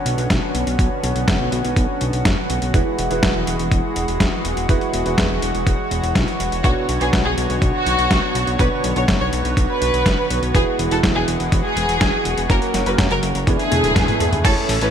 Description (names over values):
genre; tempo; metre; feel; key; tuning
italo disco; 123 BPM; 4/4; straight; B dorian; A4 = 440 Hz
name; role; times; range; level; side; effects
lush unison pad; sustained chords; 0.0-14.9 s; C#3 to C#5; -24 LUFS; equal; chorus
fat analog bass; bass; 0.1-14.9 s; D1 to F#2; -23 LUFS; equal; none
dusty soul sampler-style drum kit; drums; 0.1-14.9 s; crash cymbal, hi-hat, snare drum, toms; -24 LUFS; left 1 dB; overdrive
electronic kick drum; drums; 0.3-14.5 s; none; -20 LUFS; equal; overdrive
clear baby grand piano; stabs; 2.7-14.9 s; A2 to C#5; -25 LUFS; right 3 dB; wide subtle chorus, digital delay
warm studio violin section; melody; 6.6-14.9 s; F#4 to C#5; -22 LUFS; equal; ping-pong delay
swell; sound effects; 13.7-14.4 s; none; -27 LUFS; right 1 dB; none
room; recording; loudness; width
moderate lush hall reverb, RT60 2.0 s; bright 1980s-style digital production; -16 LUFS; side -8 dB against mid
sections
0.0-14.4 A section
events
swell 13.7-14.4; drum fill 13.7-14.4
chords
0.0 Bmadd9; 2.7 Eadd9; 6.6 Bmadd9; 10.5 Eadd9; 12.5 F#; 13.5 E7